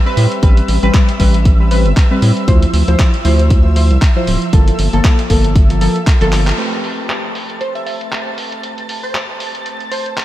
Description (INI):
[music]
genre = deep house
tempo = 117 BPM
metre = 4/4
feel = swing 57% on 16ths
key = A minor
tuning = A4 = 444 Hz
[part]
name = analog string pad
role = texture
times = 0.0-10.2 s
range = E5 to A6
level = -28 LUFS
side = right 2 dB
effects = ensemble chorus, sidechain pumping
[part]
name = warm analog keys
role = stabs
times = 0.1-10.2 s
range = F3 to C5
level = -19 LUFS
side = left 1 dB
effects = chorus, sidechain pumping, low-pass filter, ping-pong delay
[part]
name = round analog bass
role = bass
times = 0.2-6.5 s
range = D1 to A2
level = -12 LUFS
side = equal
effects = none
[part]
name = dusty soul sampler-style drum kit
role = drums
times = 0.2-10.2 s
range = handclaps, hi-hat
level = -23 LUFS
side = equal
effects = low-pass filter on hats, low-pass filter on snare, low-pass filter on room
[part]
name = electronic kick drum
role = drums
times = 0.4-6.2 s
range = none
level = -11 LUFS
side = equal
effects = none
[part]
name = plucky unison lead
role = melody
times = 7.6-10.1 s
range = C5 to E5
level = -25 LUFS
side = right 1 dB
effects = analog chorus, tape echo
[sound]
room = light reverb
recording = vinyl crackle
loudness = -11 LUFS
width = side -14 dB against mid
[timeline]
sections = 0.0-6.6 A section; 6.6-10.2 B section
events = drum fill 6.3; band accent 6.5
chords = 0.0 Am9; 2.5 Dm9; 4.5 Gm9; 6.6 Am9